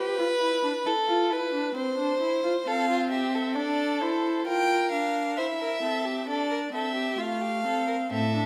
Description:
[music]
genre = classical, baroque-style fugue for string quartet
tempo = 66 BPM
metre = 3/4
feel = straight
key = F major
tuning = A4 = 439 Hz
[part]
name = warm violin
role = second line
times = 0.0-8.5 s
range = F4 to C5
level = -31 LUFS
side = equal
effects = none
[part]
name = warm viola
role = accompaniment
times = 0.0-8.5 s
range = A3 to G4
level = -32 LUFS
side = equal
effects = none
[part]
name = warm violin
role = melody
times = 2.7-8.5 s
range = C5 to G5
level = -31 LUFS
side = equal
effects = none
[part]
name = rich cello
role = bass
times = 8.1-8.5 s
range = A2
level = -29 LUFS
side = equal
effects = none
[sound]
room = wet recital hall reverb, RT60 1.5 s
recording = none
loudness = -27 LUFS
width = mono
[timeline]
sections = 0.0-8.1 A section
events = none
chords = 0.0 G; 1.8 C; 2.7 F/C; 4.5 Gm7/F; 5.4 C; 7.2 F/A

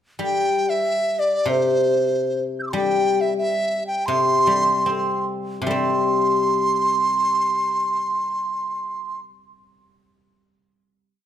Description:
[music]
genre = chinese traditional, Chinese chamber ensemble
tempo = 64-95 BPM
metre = 2/4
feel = rubato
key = C gong mode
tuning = A4 = 441 Hz
[part]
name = mellow hollow dizi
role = melody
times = 0.2-9.2 s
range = C5 to G6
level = -20 LUFS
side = right 2 dB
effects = none
[part]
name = guzheng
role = accompaniment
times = 0.2-11.3 s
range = C3 to C4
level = -23 LUFS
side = left 5 dB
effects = none
[sound]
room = light reverb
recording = minimal, uncompressed stereo recording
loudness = -18 LUFS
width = side -10 dB against mid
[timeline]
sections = 0.2-5.7 A section; 5.7-9.4 final chord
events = slowing down 2.7-5.7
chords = none

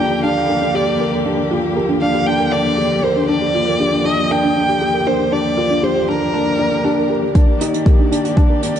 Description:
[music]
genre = piano and strings electronica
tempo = 118 BPM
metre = 4/4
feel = straight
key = unclear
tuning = A4 = 440 Hz
[part]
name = warm violin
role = melody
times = 0.0-7.1 s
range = Bb4 to G5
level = -20 LUFS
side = right 1 dB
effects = tape echo, shimmer reverb
[part]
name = dark string quartet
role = sustained chords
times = 0.0-8.8 s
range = Eb2 to D5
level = -21 LUFS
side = left 2 dB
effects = sidechain pumping, shimmer reverb
[part]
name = felt-muted upright piano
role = riff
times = 0.0-8.8 s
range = D4 to D5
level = -20 LUFS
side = equal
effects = tape echo, shimmer reverb
[part]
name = soft round pluck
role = arpeggios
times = 0.1-8.8 s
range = D4 to D5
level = -23 LUFS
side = equal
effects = lush chorus, sidechain pumping, tape echo, shimmer reverb
[part]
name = electronic kick drum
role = drums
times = 7.4-8.5 s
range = none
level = -12 LUFS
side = equal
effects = none
[part]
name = hi-hat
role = drums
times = 7.4-8.8 s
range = none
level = -28 LUFS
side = right 4 dB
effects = low-pass filter on hats, low-pass filter on room
[sound]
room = moderate echo chamber reverb, RT60 2.5 s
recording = dark, warm production, nothing above 10.3 kHz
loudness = -14 LUFS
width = side -9 dB against mid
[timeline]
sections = 0.0-7.4 A section; 7.4-8.8 B section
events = filter sweep on synth arpeggio sound 0.0-7.4; build-up 7.4-8.8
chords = 0.0 Gm7/Eb; 7.4 Ebmaj7

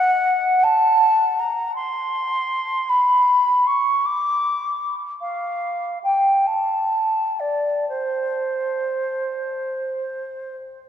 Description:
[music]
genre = classical, free, expressive piece for unaccompanied flute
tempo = 27-56 BPM (dotted quarters)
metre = 6/8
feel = rubato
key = unclear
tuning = A4 = 440 Hz
[part]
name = mellow silver concert flute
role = solo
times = 0.0-10.6 s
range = C5 to D6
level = -18 LUFS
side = equal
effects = none
[sound]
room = wet cathedral reverb, RT60 4.6 s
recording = dark, warm production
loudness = -18 LUFS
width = side -9 dB against mid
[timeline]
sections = 0.0-10.9 A section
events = none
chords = none

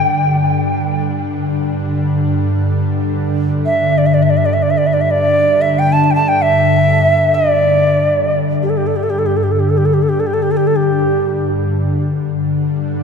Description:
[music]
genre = world meditative, free-time meditation music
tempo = free time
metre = none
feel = none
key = unclear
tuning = A4 = 440 Hz
[part]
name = Native American-style cedar flute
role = melody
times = 0.0-11.5 s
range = G4 to A5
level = -15 LUFS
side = right 1 dB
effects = ping-pong delay
[part]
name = ethereal airy pad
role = drone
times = 0.0-13.0 s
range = G2 to D3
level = -15 LUFS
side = left 1 dB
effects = ensemble chorus, built-in reverb
[sound]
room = wet church reverb, RT60 3.9 s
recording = none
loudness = -12 LUFS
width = side -6 dB against mid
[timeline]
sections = 0.0-11.9 A section; 11.9-13.0 A section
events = none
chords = none

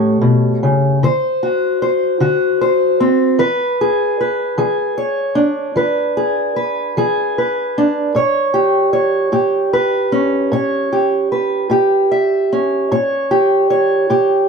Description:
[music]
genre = blues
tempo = 50 BPM (dotted quarters)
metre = 12/8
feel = straight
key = A mixolydian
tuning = A4 = 440 Hz
[part]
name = fingerpicked steel-string acoustic guitar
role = solo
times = 0.0-14.5 s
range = A2 to E5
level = -13 LUFS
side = equal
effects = none
[sound]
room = moderate studio reverb, RT60 0.7 s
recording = none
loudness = -13 LUFS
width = side -5 dB against mid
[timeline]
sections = 0.0-8.2 A section; 8.2-14.5 B section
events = none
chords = 0.0 A7; 1.0 D7; 3.4 E7; 8.2 A7

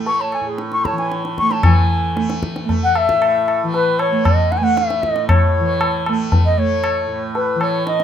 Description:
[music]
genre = indian classical, Hindustani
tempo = 116 BPM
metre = 7/4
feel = straight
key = A raga yaman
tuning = A4 = 444 Hz
[part]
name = tanpura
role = drone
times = 0.0-8.0 s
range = A2 to A3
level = -22 LUFS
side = right 2 dB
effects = none
[part]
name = bright reedy bansuri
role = melody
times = 0.1-8.0 s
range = B4 to C#6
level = -18 LUFS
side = left 1 dB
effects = none
[part]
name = tabla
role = percussion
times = 0.1-8.0 s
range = none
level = -18 LUFS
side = left 1 dB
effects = none
[part]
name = pedal harmonium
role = second line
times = 0.2-1.8 s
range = G#4 to C#5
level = -30 LUFS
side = right 2 dB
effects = none
[sound]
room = light reverb, small room reverb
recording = rough home demo mix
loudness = -15 LUFS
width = side -9 dB against mid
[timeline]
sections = 0.0-1.6 A section; 1.6-8.0 B section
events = speeding up 0.0-8.0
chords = none

